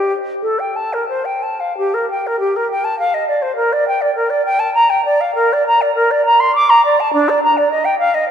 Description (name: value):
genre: classical, baroque-style fantasia for unaccompanied flute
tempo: 101 BPM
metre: 3/4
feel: uneven beats, rubato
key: G minor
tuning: A4 = 440 Hz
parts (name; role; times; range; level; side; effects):
- concert flute; solo; 0.0-8.3 s; D4 to D6; -13 LUFS; equal; none
room: wet church reverb, RT60 2.7 s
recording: none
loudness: -13 LUFS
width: side -8 dB against mid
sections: 0.0-1.8 A section; 1.8-8.3 B section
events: none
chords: none